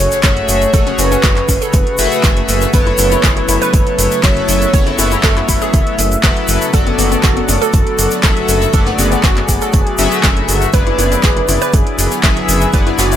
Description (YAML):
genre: progressive house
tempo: 120 BPM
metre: 4/4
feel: straight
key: unclear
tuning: A4 = 440 Hz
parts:
  - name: warm velvety synth lead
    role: melody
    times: 0.0-13.2 s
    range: F#4 to E5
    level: -19 LUFS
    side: right 1 dB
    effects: chorus, sidechain pumping, tape echo
  - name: lush unison pad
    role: sustained chords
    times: 0.0-13.2 s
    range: C#3 to F#4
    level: -23 LUFS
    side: right 2 dB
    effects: chorus, sidechain pumping
  - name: glassy wavetable pluck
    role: arpeggios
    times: 0.0-13.2 s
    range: B3 to C#5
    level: -21 LUFS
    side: left 1 dB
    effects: chorus, sidechain pumping, tape echo
  - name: chorused polysynth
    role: stabs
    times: 0.0-13.2 s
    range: F#3 to E5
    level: -19 LUFS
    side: left 4 dB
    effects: sidechain pumping, tape echo
  - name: dark detuned saw bass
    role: bass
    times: 0.0-13.2 s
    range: F#1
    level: -18 LUFS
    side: equal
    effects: sidechain pumping
  - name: impact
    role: sound effects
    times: 0.0-0.7 s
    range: none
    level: barely audible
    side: none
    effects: none
  - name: deep house drum kit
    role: drums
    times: 0.1-13.2 s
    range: handclaps, hi-hat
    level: -19 LUFS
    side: equal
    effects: overdrive, studio ambience
  - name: jazz brush drum kit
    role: drums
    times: 0.1-13.1 s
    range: hi-hat, shaker, snare drum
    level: -26 LUFS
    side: right 4 dB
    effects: sidechain pumping on hats, high-pass filter on hats, studio ambience, high-pass filter on snare, sidechain pumping on perc, high-pass filter on perc, high-pass filter on room
  - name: tube shaker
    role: percussion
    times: 0.1-13.2 s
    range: none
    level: -23 LUFS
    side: left 5 dB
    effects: none
  - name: electronic kick drum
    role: drums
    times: 0.2-12.8 s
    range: none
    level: -13 LUFS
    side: equal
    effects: overdrive, studio ambience
room: small room reverb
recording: none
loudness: -10 LUFS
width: side -10 dB against mid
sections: 0.0-13.2 A section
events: impact 0.0-0.7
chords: 0.0 F#madd9; 2.7 Aadd9/F#; 6.7 Bm7/F#; 10.7 E7/F#